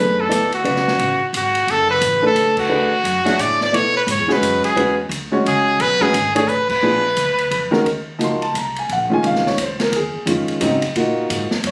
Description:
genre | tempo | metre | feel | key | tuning
modal jazz | 175 BPM | 3/4 | swing 62% on 8ths | B dorian, Eb dorian from 7.9 s | A4 = 440 Hz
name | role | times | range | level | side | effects
brilliant trumpet | melody | 0.0-7.7 s | F#4 to D5 | -19 LUFS | equal | none
warm upright piano | accompaniment | 0.0-11.7 s | C#3 to C6 | -21 LUFS | equal | none
upright bass | bass | 0.0-11.7 s | F#1 to B2 | -30 LUFS | equal | none
open jazz drum kit | drums | 0.3-11.7 s | crash cymbal, hi-hat, kick drum, ride cymbal, snare drum | -28 LUFS | equal | none
room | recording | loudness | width
light reverb | recorded on a phone in the room, studio ambience | -18 LUFS | mono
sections
0.0-7.9 A section; 7.9-11.7 B section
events
band accent 2.5, 6.7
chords
0.0 Bm9; 3.7 E/B; 6.8 A#7b9; 7.9 Ebm9

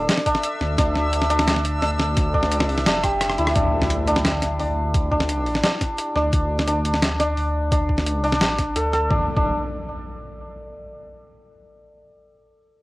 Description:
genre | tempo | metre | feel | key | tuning
half-time drum and bass | 173 BPM | 4/4 | half-time | unclear | A4 = 445 Hz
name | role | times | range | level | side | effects
santur | arpeggios | 0.0-9.5 s | D4 to A4 | -23 LUFS | equal | low-pass filter, cassette tape, tape echo
dark detuned saw bass | bass | 0.0-9.5 s | D1 to D2 | -24 LUFS | equal | none
backwards swelling texture | texture | 0.0-3.6 s | E5 | -32 LUFS | equal | built-in reverb, cassette tape
boom bap sampler-style drum kit | drums | 0.1-9.0 s | hi-hat, rim click, snare drum | -23 LUFS | equal | cassette tape
electronic kick drum | drums | 0.3-9.4 s | none | -23 LUFS | equal | cassette tape
impact | sound effects | 3.6-4.9, 9.1-10.5 s | none | -31 LUFS | equal | none
room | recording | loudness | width
light reverb, digital ambience | home recording on cassette, lossy compression artefacts | -18 LUFS | side -20 dB against mid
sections
0.0-3.6 A section; 3.6-9.1 B section; 9.1-10.5 C section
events
drop 0.0-3.6; drum fill 3.0-3.6; impact 3.6-4.9; filter sweep on detuned saw bass 3.6-9.1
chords
0.0 Dmadd9; 3.6 D5; 9.1 N.C.

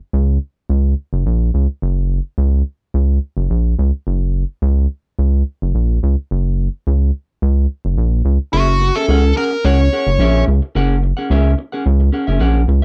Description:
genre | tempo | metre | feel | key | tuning
funk | 107 BPM | 4/4 | straight | F# mixolydian | A4 = 438 Hz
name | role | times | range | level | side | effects
rubbery square bass | bass | 0.1-12.8 s | F#1 to C#2 | -16 LUFS | equal | none
nasal lead guitar with a parked wah | melody | 8.5-10.4 s | F#4 to C#5 | -20 LUFS | equal | overdrive
clean electric guitar | accompaniment | 8.5-12.8 s | C#4 to F#5 | -22 LUFS | equal | none
room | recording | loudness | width
little or no reverb | dry, close 1970s-style studio recording | -17 LUFS | mono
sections
0.0-8.5 A section; 8.5-12.8 B section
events
none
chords
0.0 F#; 8.5 F#9

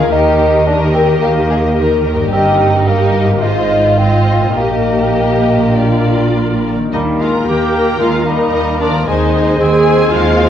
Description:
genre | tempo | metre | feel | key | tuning
classical, dramatic, fast romantic movement for symphony orchestra | 98-116 BPM | 4/4 | rubato | Eb major | A4 = 441 Hz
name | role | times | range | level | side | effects
rich symphonic violin section | melody | 0.0-10.5 s | D5 to Ab5 | -25 LUFS | left 3 dB | none
warm symphonic violin section | second line | 0.0-10.5 s | Eb4 to Bb5 | -22 LUFS | left 3 dB | none
mellow bassoon | accompaniment | 0.0-10.5 s | Ab3 to F4 | -17 LUFS | right 1 dB | none
warm symphonic viola section | accompaniment | 0.0-10.5 s | D4 to C5 | -18 LUFS | right 1 dB | none
mellow French horn section | sustained chords | 0.0-10.5 s | Bb3 to Eb5 | -19 LUFS | left 4 dB | none
concert harp | arpeggios | 0.0-10.5 s | G2 to C5 | -22 LUFS | left 6 dB | none
warm symphonic cello section | bass | 0.0-10.5 s | G2 to Eb3 | -19 LUFS | right 2 dB | none
warm symphonic double bass section | bass | 0.0-10.5 s | G1 to Eb2 | -18 LUFS | right 3 dB | none
dark cor anglais | second line | 6.9-10.5 s | F3 to C4 | -20 LUFS | right 2 dB | none
mellow hollow silver concert flute | second line | 6.9-10.5 s | Bb4 to C5 | -22 LUFS | left 3 dB | none
room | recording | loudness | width
moderate recital hall reverb, RT60 1.6 s | worn, warbling old tape, cassette tape, warbly pitch drift | -10 LUFS | side -10 dB against mid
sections
0.0-6.9 A section; 6.9-10.5 B section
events
none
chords
0.1 Eb; 2.3 Eb/G; 3.4 Fm7/Ab; 4.6 Eb/Bb; 5.8 Bb; 6.9 Eb; 9.1 Ab/Eb

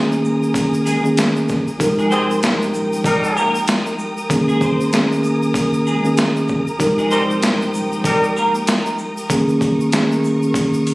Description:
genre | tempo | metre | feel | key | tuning
hip hop, boom-bap hip-hop | 96 BPM | 4/4 | swing 60% on 16ths | unclear | A4 = 436 Hz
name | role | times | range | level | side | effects
semi-hollow electric guitar | melody | 0.0-8.5 s | Ab3 to C5 | -23 LUFS | equal | ensemble chorus, digital delay
mellow tine electric piano | accompaniment | 0.0-10.9 s | Eb3 to Bb4 | -17 LUFS | equal | medium stereo tremolo, cassette tape
warm studio string section | sustained chords | 0.0-10.9 s | Bb4 to Eb6 | -27 LUFS | equal | none
warm sub bass | bass | 0.0-10.8 s | Eb1 to F1 | -33 LUFS | equal | none
tube shaker | percussion | 0.1-10.9 s | none | -35 LUFS | equal | none
boom bap sampler-style drum kit | drums | 0.2-10.9 s | hi-hat, kick drum, shaker, snare drum | -20 LUFS | equal | overdrive
warm horn section | stabs | 2.1-8.3 s | Eb3 to Bb4 | -21 LUFS | left 1 dB | digital delay
room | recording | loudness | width
light reverb, digital ambience | recorded on a phone in the room, studio reverb, compression | -15 LUFS | side -21 dB against mid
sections
0.0-10.9 A section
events
none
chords
0.0 Eb7sus4; 1.8 Fm11; 4.3 Eb7sus4; 6.8 Fm11; 9.3 Eb7sus4

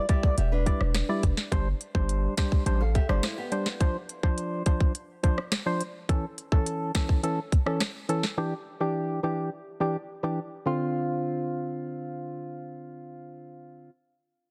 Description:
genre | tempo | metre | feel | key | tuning
dancehall | 105 BPM | 4/4 | straight | D dorian | A4 = 440 Hz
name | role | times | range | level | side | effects
percussive organ stab | accompaniment | 0.0-13.9 s | D3 to D5 | -32 LUFS | equal | chorus, sidechain pumping
flamenco guitar | arpeggios | 0.0-3.8 s | B3 to F5 | -37 LUFS | equal | delay
island pop drum kit | drums | 0.1-8.4 s | hi-hat, kick drum, rim click, snare drum | -28 LUFS | equal | vintage 12-bit sampler grit
warm 808-style bass | bass | 0.4-3.2 s | E1 to A1 | -29 LUFS | equal | none
room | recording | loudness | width
little or no reverb | dense, heavily limited modern master | -28 LUFS | mono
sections
0.0-10.7 A section; 10.7-12.9 B section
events
none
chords
0.0 Em7; 1.5 Gsus4; 3.8 Dm7; 6.1 A; 8.4 Em7; 10.7 Dm7

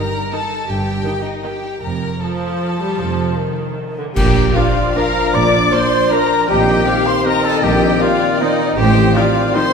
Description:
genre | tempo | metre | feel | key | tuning
classical, orchestral ballroom waltz | 156 BPM | 3/4 | uneven beats, rubato | Bb major | A4 = 440 Hz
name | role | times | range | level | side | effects
warm chamber violin section | melody | 0.0-9.7 s | Eb5 to D6 | -23 LUFS | left 4 dB | none
rich chamber violin section | second line | 0.0-9.7 s | Eb4 to F5 | -24 LUFS | left 2 dB | none
rich studio viola section | accompaniment | 0.0-9.6 s | D3 to Eb4 | -24 LUFS | right 1 dB | none
rich chamber double bass section | bass | 0.7-9.1 s | F1 to Bb1 | -23 LUFS | right 4 dB | none
warm chamber cello section | bass | 0.7-9.1 s | F2 to Bb2 | -24 LUFS | right 1 dB | none
cymbal swell, clash cymbals and concert bass drum | percussion | 1.8-4.9 s | none | -23 LUFS | equal | none
clear clarinet | second line | 4.1-9.7 s | Eb4 to D5 | -21 LUFS | left 2 dB | none
clear oboe | second line | 4.2-9.7 s | Eb4 to D5 | -23 LUFS | equal | none
mellow hollow silver concert flute | second line | 4.2-9.7 s | Eb5 to D6 | -24 LUFS | left 3 dB | none
dark French horn section | sustained chords | 4.2-9.7 s | Eb3 to D4 | -21 LUFS | left 3 dB | none
dark trumpet section | stabs | 4.2-9.7 s | Eb4 to D5 | -20 LUFS | equal | none
dark tuba | bass | 4.2-9.1 s | A1 to Bb1 | -23 LUFS | right 3 dB | none
room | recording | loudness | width
wet concert hall reverb, RT60 1.6 s | none | -14 LUFS | side -6 dB against mid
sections
0.0-4.2 A section; 4.2-9.7 B section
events
band accent 4.2-4.6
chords
0.0 Eb; 1.8 F; 4.2 Bb; 6.5 Cm7/Bb; 8.8 F7/A

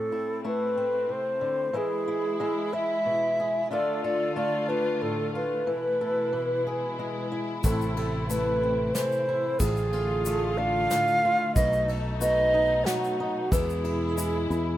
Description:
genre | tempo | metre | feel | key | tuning
acoustic folk duo or small band | 92 BPM | 3/4 | straight | A harmonic minor | A4 = 442 Hz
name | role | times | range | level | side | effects
bright alto flute | melody | 0.0-14.8 s | F#4 to F5 | -26 LUFS | right 1 dB | none
fingerpicked swing-style acoustic guitar | accompaniment | 0.0-14.8 s | A2 to A4 | -32 LUFS | left 2 dB | none
dark studio string section | sustained chords | 0.0-14.8 s | B2 to F4 | -34 LUFS | left 1 dB | none
fingered electric bass | bass | 7.6-14.8 s | A1 to E2 | -30 LUFS | equal | none
soft brush drum kit | drums | 7.6-14.3 s | kick drum, ride cymbal, snare drum | -31 LUFS | equal | none
egg shaker | percussion | 7.6-14.6 s | none | -38 LUFS | left 5 dB | none
room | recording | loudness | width
light reverb | rough home demo mix | -24 LUFS | side -13 dB against mid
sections
0.0-14.8 A section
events
none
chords
0.0 Amadd9; 1.7 E; 3.7 Dm; 5.7 Esus4; 6.3 E; 7.6 Am; 9.6 Dm/A; 11.6 B7; 13.5 E

